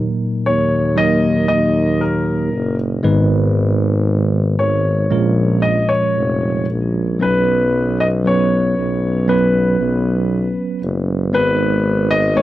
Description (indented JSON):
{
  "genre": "pop",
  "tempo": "58 BPM",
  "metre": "4/4",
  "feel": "straight",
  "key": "unclear",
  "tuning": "A4 = 440 Hz",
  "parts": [
    { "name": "bright tine electric piano", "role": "accompaniment", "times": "0.0-12.4 s", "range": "Ab2 to Db5", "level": "-18 LUFS", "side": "right 1 dB", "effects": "slow stereo tremolo" },
    { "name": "warm tuba", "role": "bass", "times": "0.0-12.4 s", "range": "F1 to Eb2", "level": "-19 LUFS", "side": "equal", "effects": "none" },
    { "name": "warm concert grand piano", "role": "melody", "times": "0.5-12.4 s", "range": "Bb4 to Eb5", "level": "-19 LUFS", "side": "left 2 dB", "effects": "none" }
  ],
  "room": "little or no reverb",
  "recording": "dry, close 1970s-style studio recording",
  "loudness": "-14 LUFS",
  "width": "side -15 dB against mid",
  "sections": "0.0-7.2 A section; 7.2-12.4 B section",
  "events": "none",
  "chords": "0.0 Ebm; 3.0 Abm; 5.1 Bbm7; 7.2 Bsus2; 11.3 Abm",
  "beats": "0.97 2.01 | 3.04 4.08 5.12 6.17 | 7.22 8.26 9.29 10.32 | 11.34 12.36"
}